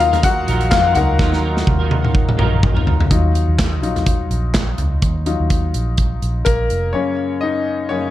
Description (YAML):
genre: piano-driven pop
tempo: 125 BPM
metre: 4/4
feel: swing 56% on 16ths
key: unclear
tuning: A4 = 442 Hz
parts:
  - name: bright grand piano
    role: accompaniment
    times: 0.0-8.1 s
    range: F#2 to F#5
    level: -20 LUFS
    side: left 5 dB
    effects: none
  - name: clean electric guitar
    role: riff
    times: 0.0-3.1 s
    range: D#3 to A#4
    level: -24 LUFS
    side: right 6 dB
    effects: analog chorus
  - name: vintage muted fingered electric bass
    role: bass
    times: 0.0-6.9 s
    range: E#1 to E#2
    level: -19 LUFS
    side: right 1 dB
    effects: none
  - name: modern studio drum kit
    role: drums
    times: 0.0-6.8 s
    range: handclaps, hi-hat, kick drum, snare drum, toms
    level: -18 LUFS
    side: equal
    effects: none
room: light reverb, small room ambience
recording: dark, warm production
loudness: -15 LUFS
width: side -14 dB against mid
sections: 0.0-3.1 A section; 3.1-6.9 B section; 6.9-8.1 C section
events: grand piano solo 0.0-3.1, 3.1-6.9, 6.9-8.1; drum fill 1.2-3.1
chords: 0.0 D#madd9; 6.9 F#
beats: 0.24 0.71 | 1.19 1.67 2.15 2.63 | 3.11 3.58 4.06 4.54 | 5.02 5.50 5.98 6.46 | 6.94 7.42 7.90